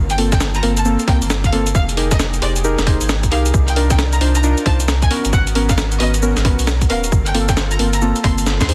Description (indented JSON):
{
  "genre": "UK garage, two-step garage",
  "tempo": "134 BPM",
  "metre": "4/4",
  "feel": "swing 63% on 16ths",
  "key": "unclear",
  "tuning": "A4 = 440 Hz",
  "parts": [
    { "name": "warm analog pad", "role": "sustained chords", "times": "0.0-8.7 s", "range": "Bb3 to Bb4", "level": "-32 LUFS", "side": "equal", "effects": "chorus, sidechain pumping" },
    { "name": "saturated sub bass", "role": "bass", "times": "0.0-8.7 s", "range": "Eb1 to G2", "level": "-20 LUFS", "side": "equal", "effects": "none" },
    { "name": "rich chamber violin section", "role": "melody", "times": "0.1-8.7 s", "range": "D5 to C6", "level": "-28 LUFS", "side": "equal", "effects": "none" },
    { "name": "breakbeat sampler-style drum kit", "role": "drums", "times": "0.1-8.7 s", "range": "hi-hat, shaker, snare drum", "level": "-24 LUFS", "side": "equal", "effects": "studio reverb" },
    { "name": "deep mellow chord stab", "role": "stabs", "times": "0.2-8.7 s", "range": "Bb3 to C5", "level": "-24 LUFS", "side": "equal", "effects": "chorus, dub echo" },
    { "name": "electronic kick drum", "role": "drums", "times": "0.3-8.7 s", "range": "none", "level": "-20 LUFS", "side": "equal", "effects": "studio reverb" }
  ],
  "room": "light reverb",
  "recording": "dense, heavily limited modern master, vinyl crackle",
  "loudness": "-16 LUFS",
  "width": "mono",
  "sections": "0.0-8.7 A section",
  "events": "drum fill 8.5",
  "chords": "0.0 Gm11; 1.7 Fm11; 3.5 Cm11; 5.1 Abm11; 7.1 Gm11"
}